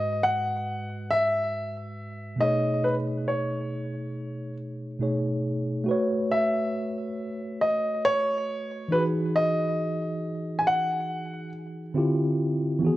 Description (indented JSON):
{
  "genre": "R&B",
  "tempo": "69 BPM",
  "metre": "4/4",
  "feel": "straight",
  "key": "unclear",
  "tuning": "A4 = 441 Hz",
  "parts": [
    { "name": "warm grand piano", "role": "melody", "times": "0.0-11.5 s", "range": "B4 to G#5", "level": "-26 LUFS", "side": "equal", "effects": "none" },
    { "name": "mellow tine electric piano", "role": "accompaniment", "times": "0.0-13.0 s", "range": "G#2 to C#5", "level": "-28 LUFS", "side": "equal", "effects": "medium stereo tremolo" }
  ],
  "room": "light reverb, studio ambience",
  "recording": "worn, warbling old tape, cassette tape, warbly pitch drift",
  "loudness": "-24 LUFS",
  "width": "side -16 dB against mid",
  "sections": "0.0-5.9 A section; 5.9-13.0 B section",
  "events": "none",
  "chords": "0.0 G#m7; 2.4 B13; 5.9 A69; 8.9 Emaj9; 12.0 Dm11",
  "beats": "0.66 1.53 | 2.40 3.27 4.14 5.01 | 5.88 6.75 7.61 8.48 | 9.35 10.22 11.09 11.96 | 12.83"
}